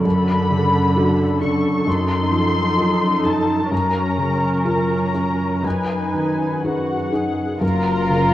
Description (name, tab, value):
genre	cinematic, emotional film score for orchestra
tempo	59-67 BPM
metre	4/4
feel	rubato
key	unclear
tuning	A4 = 440 Hz
part	muted symphonic violin section	melody	0.0-8.3 s	F#5 to C#6	-24 LUFS	left 3 dB	none
part	felt-muted upright piano	accompaniment	0.0-8.3 s	F#2 to B4	-20 LUFS	left 1 dB	none
part	muted symphonic viola section	accompaniment	0.0-8.3 s	D3 to B4	-24 LUFS	right 1 dB	none
part	muted symphonic cello section	bass	0.0-8.3 s	F#2	-24 LUFS	right 2 dB	none
part	muted symphonic violin section	second line	7.6-8.3 s	E#4 to A#4	-21 LUFS	left 1 dB	none
part	muted symphonic double bass section	bass	7.6-8.3 s	F#1	-27 LUFS	right 1 dB	none
room	moderate concert hall reverb, RT60 2.0 s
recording	worn, warbling old tape, cassette tape, warbly pitch drift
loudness	-17 LUFS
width	side -14 dB against mid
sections	0.0-7.6 A section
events	none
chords	0.1 Dmaj7/F#; 1.9 F7/F#; 3.7 A#m/F#; 5.6 G#m/F#; 7.6 F#maj7